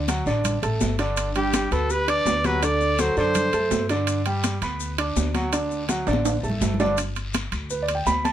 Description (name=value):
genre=latin, Cuban son and guajira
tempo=165 BPM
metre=4/4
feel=straight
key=G major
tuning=A4 = 440 Hz
part: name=warm grand piano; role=arpeggios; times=0.0-8.3 s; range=D3 to D6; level=-26 LUFS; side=right 2 dB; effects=none
part: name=upright bass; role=bass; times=0.0-8.3 s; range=G1 to G2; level=-27 LUFS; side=left 1 dB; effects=none
part: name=congas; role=percussion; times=0.1-8.3 s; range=none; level=-29 LUFS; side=left 2 dB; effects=none
part: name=guiro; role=percussion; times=0.1-8.3 s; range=none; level=-38 LUFS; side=left 3 dB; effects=none
part: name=maracas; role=percussion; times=0.1-8.3 s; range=none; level=-36 LUFS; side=left 8 dB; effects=none
part: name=timbales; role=percussion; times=0.1-8.3 s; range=none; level=-29 LUFS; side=right 7 dB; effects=none
part: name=bright trumpet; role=melody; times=1.4-3.9 s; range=G4 to D5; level=-24 LUFS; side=equal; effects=none
part: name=mellow tine electric piano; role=second line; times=1.4-3.9 s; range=D4 to B4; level=-27 LUFS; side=right 1 dB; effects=slow stereo tremolo
room=light reverb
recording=none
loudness=-21 LUFS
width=side -11 dB against mid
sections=0.0-7.0 A section; 7.0-8.3 B section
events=drum fill 5.9-7.0; grand piano solo 7.0-8.3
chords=0.0 D; 1.2 G; 2.6 D7; 4.1 G; 5.5 D; 7.0 G5